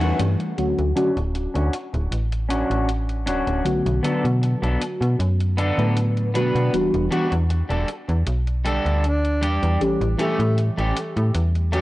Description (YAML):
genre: vaporwave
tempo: 78 BPM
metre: 4/4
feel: swing 53% on 16ths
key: D major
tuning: A4 = 440 Hz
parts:
  - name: mellow FM electric piano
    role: accompaniment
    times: 0.0-11.8 s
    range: D3 to B4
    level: -24 LUFS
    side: equal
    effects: phaser, ensemble chorus, analog delay
  - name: electric guitar at the edge of break-up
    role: riff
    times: 0.0-11.8 s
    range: G3 to B4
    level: -26 LUFS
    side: equal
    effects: lush chorus, low-pass filter, analog delay
  - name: slap-like FM bass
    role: bass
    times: 0.0-11.8 s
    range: D1 to B2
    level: -21 LUFS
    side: equal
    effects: none
  - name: electronic hi-hat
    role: drums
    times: 0.0-11.8 s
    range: none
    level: -35 LUFS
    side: equal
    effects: overdrive
  - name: clear alto saxophone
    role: melody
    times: 9.0-11.8 s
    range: F#3 to D4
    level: -27 LUFS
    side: equal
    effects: tape echo
room: light reverb, digital ambience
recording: worn, warbling old tape, cassette tape, warbly pitch drift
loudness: -19 LUFS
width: side -17 dB against mid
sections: 0.6-11.8 A section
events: band accent 0.0; filter sweep on clean electric guitar 0.6-11.8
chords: 0.0 A7; 0.6 Dmaj7; 3.7 Bm7; 6.7 Em9; 9.8 A7